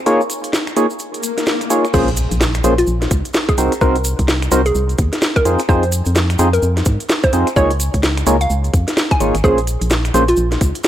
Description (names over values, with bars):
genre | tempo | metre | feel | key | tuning
UK garage, two-step garage | 128 BPM | 4/4 | swing 61% on 16ths | Bb minor | A4 = 440 Hz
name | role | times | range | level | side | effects
percussive organ stab | stabs | 0.1-10.2 s | Bb3 to Db5 | -18 LUFS | equal | chorus, analog delay
garage drum kit | drums | 0.1-10.9 s | crash cymbal, finger snaps, hi-hat, snare drum | -20 LUFS | equal | none
cabasa | percussion | 0.1-10.9 s | none | -28 LUFS | right 2 dB | none
swell and impact | sound effects | 1.1-3.8 s | none | -26 LUFS | left 2 dB | none
hollow square pluck | melody | 1.9-10.5 s | F4 to Ab5 | -20 LUFS | equal | chorus, analog delay
organ-like FM bass | bass | 1.9-10.7 s | Ab1 to Ab2 | -18 LUFS | equal | transformer saturation, sidechain pumping
electronic kick drum | drums | 1.9-10.7 s | none | -17 LUFS | equal | none
room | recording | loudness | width
little or no reverb | dry, gritty hardware recording, transformer saturation | -13 LUFS | side -12 dB against mid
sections
0.0-1.9 A section; 1.9-10.9 B section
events
break 0.1-1.9; swell 1.1-1.9; drop 1.9-10.9; impact 1.9-3.8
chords
0.1 Db69; 1.9 Bbm7; 3.6 Cm7b5; 5.5 Fm7; 7.6 Db69; 9.4 Bbm7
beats
| 0.06 0.53 1.00 1.47 | 1.94 2.41 2.88 3.35 | 3.81 4.28 4.75 5.22 | 5.69 6.16 6.63 7.09 | 7.56 8.03 8.50 8.97 | 9.44 9.91 10.38 10.85